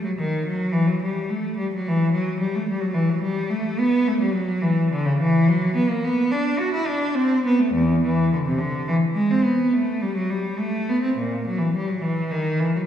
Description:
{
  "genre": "classical, baroque-style suite movement for unaccompanied cello",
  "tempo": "71 BPM (dotted quarters)",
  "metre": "12/8",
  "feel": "rubato",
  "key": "E minor",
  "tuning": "A4 = 440 Hz",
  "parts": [
    { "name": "clear cello", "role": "solo", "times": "0.0-12.8 s", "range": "E2 to F#4", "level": "-20 LUFS", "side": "equal", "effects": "none" }
  ],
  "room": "wet recital hall reverb, RT60 1.6 s",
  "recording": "heard from further back in the room, small room ambience",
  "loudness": "-20 LUFS",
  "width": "side -9 dB against mid",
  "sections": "0.0-12.9 A section",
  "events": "none",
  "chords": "none"
}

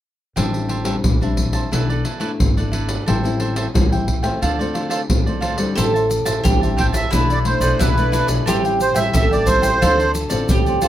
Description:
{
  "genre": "samba and choro",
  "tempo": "89 BPM",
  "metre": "4/4",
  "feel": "straight",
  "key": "A minor",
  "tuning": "A4 = 441 Hz",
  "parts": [
    { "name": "cavaquinho", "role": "accompaniment", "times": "0.4-10.9 s", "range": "E4 to A5", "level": "-26 LUFS", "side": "right 3 dB", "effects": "none" },
    { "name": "nylon-string guitar", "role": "accompaniment", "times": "0.4-10.9 s", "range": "A2 to A4", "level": "-25 LUFS", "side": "left 4 dB", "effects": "none" },
    { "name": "upright bass", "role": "bass", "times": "0.4-10.9 s", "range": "G#1 to D2", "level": "-23 LUFS", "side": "equal", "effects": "none" },
    { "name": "surdo, pandeiro and tube shaker", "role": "percussion", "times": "0.4-10.9 s", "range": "none", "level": "-20 LUFS", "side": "equal", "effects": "none" },
    { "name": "mandolin", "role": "second line", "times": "5.8-10.9 s", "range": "E4 to A4", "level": "-22 LUFS", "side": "right 1 dB", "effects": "none" },
    { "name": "accordion", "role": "melody", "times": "6.8-10.1 s", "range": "B4 to G5", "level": "-19 LUFS", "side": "right 2 dB", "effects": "light tremolo tuning" }
  ],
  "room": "light reverb",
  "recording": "close, detailed microphones",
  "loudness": "-16 LUFS",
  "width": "side -12 dB against mid",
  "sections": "0.4-5.8 A section; 5.8-10.9 B section",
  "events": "none",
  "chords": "0.4 Am7; 1.7 E7sus4/B; 3.1 Am7; 4.4 Dm7; 5.8 Am7; 7.1 E7sus4/B; 8.5 Am7; 9.8 Dm7"
}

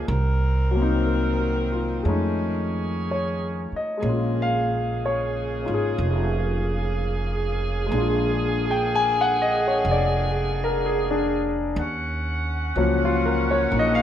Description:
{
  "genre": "jazz ballad",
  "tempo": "62 BPM",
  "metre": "4/4",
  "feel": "swing 69% on 8ths",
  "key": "unclear",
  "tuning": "A4 = 440 Hz",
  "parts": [
    { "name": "warm grand piano", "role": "accompaniment", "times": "0.0-14.0 s", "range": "F3 to Ab5", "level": "-24 LUFS", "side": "left 3 dB", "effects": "none" },
    { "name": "mellow saxophone section", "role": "sustained chords", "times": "0.0-14.0 s", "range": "Db3 to Gb5", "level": "-28 LUFS", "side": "right 3 dB", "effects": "none" },
    { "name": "upright bass", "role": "bass", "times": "0.0-14.0 s", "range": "F1 to F2", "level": "-25 LUFS", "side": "right 1 dB", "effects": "none" }
  ],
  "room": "light reverb",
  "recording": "none",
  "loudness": "-21 LUFS",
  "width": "side -10 dB against mid",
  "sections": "0.0-14.0 A section",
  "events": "none",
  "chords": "0.1 Cm7b5; 2.0 F7alt; 4.0 Bbm7; 7.9 Bb7; 11.8 Ebm9"
}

